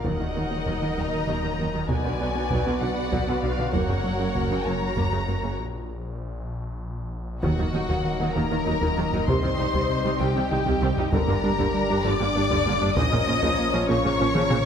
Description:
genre	cinematic, hybrid orchestral and electronic film score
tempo	65 BPM (dotted quarters)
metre	6/8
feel	straight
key	unclear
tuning	A4 = 442 Hz
part	rich chamber violin section	melody	0.0-14.7 s	F5 to Eb6	-30 LUFS	left 4 dB	none
part	rich symphonic violin section	second line	0.0-14.7 s	Gb4 to Eb5	-30 LUFS	left 3 dB	none
part	warm analog pad	sustained chords	0.0-14.7 s	F3 to Eb5	-32 LUFS	right 1 dB	chorus
part	soft round pluck	arpeggios	0.0-14.6 s	C3 to B4	-35 LUFS	right 3 dB	none
part	phased detuned saw bass	bass	0.0-14.7 s	Eb1 to C2	-33 LUFS	left 1 dB	phaser
part	rich studio cello section	bass	0.0-14.6 s	Gb2 to Eb3	-33 LUFS	right 2 dB	none
part	solo taiko drums	drums	0.0-14.7 s	none	-30 LUFS	left 1 dB	none
part	warm symphonic viola section	accompaniment	0.1-14.6 s	C3 to F#4	-30 LUFS	right 2 dB	none
part	round analog bass	riff	0.1-14.6 s	C2 to B3	-31 LUFS	right 2 dB	none
part	rich symphonic double bass section	bass	0.1-14.6 s	Gb1 to Eb2	-34 LUFS	right 3 dB	none
part	dark French horn section	sustained chords	7.4-14.6 s	F3 to Eb4	-31 LUFS	left 3 dB	none
room	wet recital hall reverb, RT60 1.4 s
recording	none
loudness	-22 LUFS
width	side -8 dB against mid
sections	0.0-7.4 A section; 7.4-14.7 B section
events	break 5.6-7.4; drum fill 7.0-7.4, 14.4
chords	0.1 Ebm; 1.9 Bm; 3.7 Gb; 5.6 N.C.; 7.4 Ebm; 9.3 Cm; 11.1 Gm; 13.0 Bbm

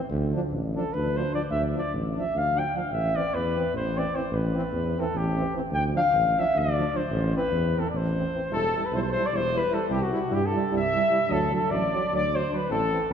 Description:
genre	balkan folk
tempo	301 BPM (eighths)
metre	7/8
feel	straight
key	A minor, E minor from 8.5 s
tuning	A4 = 442 Hz
part	mellow tuba	bass	0.1-13.1 s	E1 to G2	-29 LUFS	equal	none
part	clear French horn	accompaniment	0.3-13.1 s	C4 to E4	-36 LUFS	left 4 dB	none
part	mellow euphonium	accompaniment	0.4-13.0 s	E3 to G3	-33 LUFS	right 6 dB	none
part	mellow flugelhorn	melody	0.8-13.1 s	F#4 to G5	-26 LUFS	left 1 dB	none
part	dark trumpet	second line	8.5-13.1 s	F#4 to E5	-30 LUFS	left 3 dB	none
room	wet church reverb, RT60 2.6 s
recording	recorded in a church or concert hall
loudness	-23 LUFS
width	side -8 dB against mid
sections	0.0-8.5 A section; 8.5-13.1 B section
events	flugelhorn solo 0.0-8.5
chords	0.1 Dm; 2.9 Am; 5.7 Dm; 7.1 Am; 8.5 Em; 9.9 C; 11.3 D

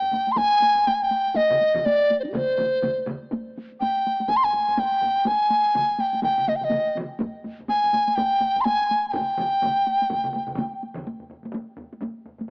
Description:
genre	japanese traditional, taiko drum ensemble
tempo	124 BPM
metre	4/4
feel	swing 60% on 16ths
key	G miyako bushi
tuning	A4 = 440 Hz
part	mellow hollow large dizi	melody	0.0-10.8 s	D4 to C6	-20 LUFS	equal	none
part	taiko ensemble	percussion	0.0-12.5 s	none	-31 LUFS	equal	none
part	taiko ensemble	percussion	0.0-12.5 s	none	-44 LUFS	equal	none
part	taiko ensemble	percussion	0.4-10.2 s	none	-36 LUFS	equal	none
part	taiko ensemble	percussion	1.5-11.0 s	none	-35 LUFS	equal	none
room	light reverb, small room ambience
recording	rough home demo mix, AM radio sound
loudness	-19 LUFS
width	side -37 dB against mid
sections	0.0-11.1 A section; 11.1-12.5 B section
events	speeding up 0.0-12.5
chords	none

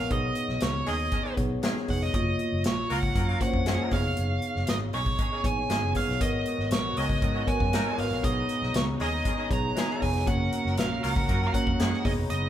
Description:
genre	polished 1980s jazz-funk pop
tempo	118 BPM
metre	4/4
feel	straight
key	unclear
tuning	A4 = 440 Hz
part	nasal lead guitar with a parked wah	melody	0.0-12.5 s	C#5 to A#5	-31 LUFS	right 2 dB	overdrive
part	mellow tine electric piano	accompaniment	0.0-12.5 s	A#3 to C#5	-31 LUFS	equal	medium stereo tremolo
part	fingered electric bass	bass	0.0-12.5 s	E#1 to G#2	-30 LUFS	equal	none
part	modern studio drum kit	drums	0.1-12.4 s	hi-hat, kick drum, snare drum	-30 LUFS	equal	none
part	warm horn section	second line	0.9-12.2 s	D#3 to A#4	-36 LUFS	left 1 dB	none
part	bright chamber string section	sustained chords	6.2-12.5 s	F#3 to A#4	-39 LUFS	equal	none
room	moderate large studio reverb, RT60 1.4 s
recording	band playing live in one room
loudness	-24 LUFS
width	side -11 dB against mid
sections	0.0-12.5 A section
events	none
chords	0.1 B69; 2.1 F#maj7; 3.9 B69; 6.2 G#m11; 8.2 B69; 10.3 F#maj7

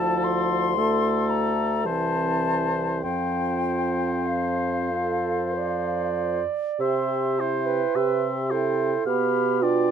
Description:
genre	classical, slow romantic movement for wind quintet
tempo	44-58 BPM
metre	3/4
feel	rubato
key	F major, C major from 6.8 s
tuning	A4 = 443 Hz
part	concert flute	melody	0.0-9.9 s	F5 to C6	-28 LUFS	left 7 dB	none
part	warm oboe	second line	0.0-9.9 s	A4 to F5	-31 LUFS	left 3 dB	none
part	mellow clarinet	accompaniment	0.0-9.9 s	C4 to D5	-28 LUFS	right 8 dB	none
part	warm French horn	accompaniment	0.0-9.9 s	E3 to G4	-29 LUFS	equal	none
part	mellow bassoon	bass	0.0-9.9 s	C2 to C3	-28 LUFS	right 2 dB	none
room	moderate studio reverb, RT60 0.5 s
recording	minimal, uncompressed stereo recording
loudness	-22 LUFS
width	side -8 dB against mid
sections	0.0-6.8 A section; 6.8-9.9 B section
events	none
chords	0.0 Dm7; 1.9 C6; 3.0 F5; 6.8 C; 9.1 G7/B

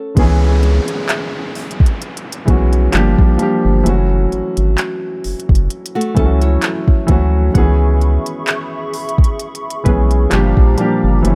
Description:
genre	contemporary R&B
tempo	65 BPM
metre	4/4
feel	swing 54% on 16ths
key	unclear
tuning	A4 = 440 Hz
part	nylon-string guitar	arpeggios	0.0-0.1, 6.0-7.5 s	A3 to C#5	-25 LUFS	equal	digital delay
part	warm grand piano	accompaniment	0.1-11.3 s	Bb2 to G#4	-20 LUFS	equal	none
part	round analog bass	bass	0.2-11.3 s	F#1 to D2	-16 LUFS	equal	none
part	smooth R&B drum kit	drums	0.2-11.3 s	handclaps, hi-hat, kick drum	-17 LUFS	equal	none
part	downlifter	sound effects	0.2-7.5 s	none	-32 LUFS	equal	none
part	glassy wavetable pluck	texture	1.1-10.7 s	B4 to F#5	-35 LUFS	equal	none
part	hollow soft pad	sustained chords	7.5-11.3 s	F#4 to D6	-28 LUFS	equal	ensemble chorus
room	little or no reverb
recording	none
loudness	-15 LUFS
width	mono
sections	0.2-11.3 A section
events	stop 0.0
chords	0.2 C#m7; 2.9 Gm7; 3.9 F#m7; 7.5 C#m7; 10.3 Gm7

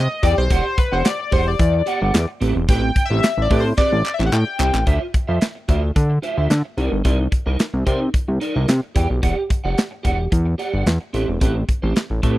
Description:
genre	early-eighties boogie funk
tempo	110 BPM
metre	4/4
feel	straight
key	unclear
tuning	A4 = 442 Hz
part	chorused polysynth	accompaniment	0.0-4.8 s	B4 to G5	-22 LUFS	left 3 dB	none
part	fat analog bass	bass	0.0-12.4 s	E1 to D3	-19 LUFS	equal	none
part	electric guitar at the edge of break-up	riff	0.1-12.4 s	C4 to G5	-25 LUFS	right 3 dB	ensemble chorus
part	modern studio drum kit	drums	0.2-12.4 s	handclaps, hi-hat, kick drum, snare drum	-19 LUFS	equal	none
room	studio reverb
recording	dry, close 1970s-style studio recording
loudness	-17 LUFS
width	side -16 dB against mid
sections	0.0-4.9 A section; 4.9-12.4 B section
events	analog polysynth solo 0.0-4.9; drum fill 3.8-4.9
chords	0.2 Em9; 2.4 Am9; 4.9 Dm9; 6.8 Cm9; 9.0 Em9; 11.1 Am9

